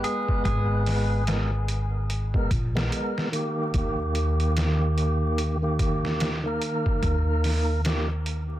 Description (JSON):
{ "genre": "trip hop", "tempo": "73 BPM", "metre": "4/4", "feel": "swing 60% on 16ths", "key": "G# harmonic minor", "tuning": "A4 = 435 Hz", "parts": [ { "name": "clean electric guitar", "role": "melody", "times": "0.0-2.1 s", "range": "G#4", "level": "-32 LUFS", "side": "left 1 dB", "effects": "tape echo" }, { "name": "tonewheel organ", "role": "accompaniment", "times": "0.0-8.1 s", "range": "D#3 to B4", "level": "-28 LUFS", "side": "right 1 dB", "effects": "overdrive, fast rotary speaker, tremolo, tape echo" }, { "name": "trip hop sampler-style drum kit", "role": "drums", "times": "0.0-8.5 s", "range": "hi-hat, kick drum, snare drum", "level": "-28 LUFS", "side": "equal", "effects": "none" }, { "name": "upright bass", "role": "bass", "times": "0.5-8.6 s", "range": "G#1 to D#2", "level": "-25 LUFS", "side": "equal", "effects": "none" } ], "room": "little or no reverb", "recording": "dense, heavily limited modern master, vinyl crackle", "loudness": "-23 LUFS", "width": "side -14 dB against mid", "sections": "0.0-8.6 A section", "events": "none", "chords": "0.0 G#madd9; 3.7 D#", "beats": "| 0.45 1.27 2.09 2.91 | 3.73 4.56 5.38 6.20 | 7.02 7.84" }